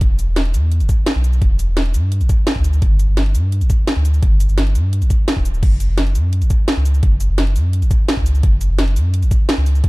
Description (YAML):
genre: liquid drum and bass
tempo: 171 BPM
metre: 4/4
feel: straight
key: unclear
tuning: A4 = 440 Hz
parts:
  - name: warm sub bass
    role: bass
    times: 0.0-9.9 s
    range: D1 to G2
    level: -15 LUFS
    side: equal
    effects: none
  - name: drum and bass drum kit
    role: drums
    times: 0.0-9.9 s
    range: crash cymbal, hi-hat, shaker, snare drum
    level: -22 LUFS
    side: equal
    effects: overdrive
  - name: electronic kick drum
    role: drums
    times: 0.0-9.9 s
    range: none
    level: -15 LUFS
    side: equal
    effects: none
room: little or no reverb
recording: dark, warm production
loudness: -14 LUFS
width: side -22 dB against mid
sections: 0.0-9.9 A section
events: none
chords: none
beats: | 0.01 0.36 0.71 1.07 | 1.42 1.77 2.12 2.47 | 2.82 3.17 3.52 3.87 | 4.22 4.57 4.92 5.28 | 5.63 5.98 6.33 6.68 | 7.03 7.38 7.73 8.08 | 8.43 8.79 9.14 9.49 | 9.84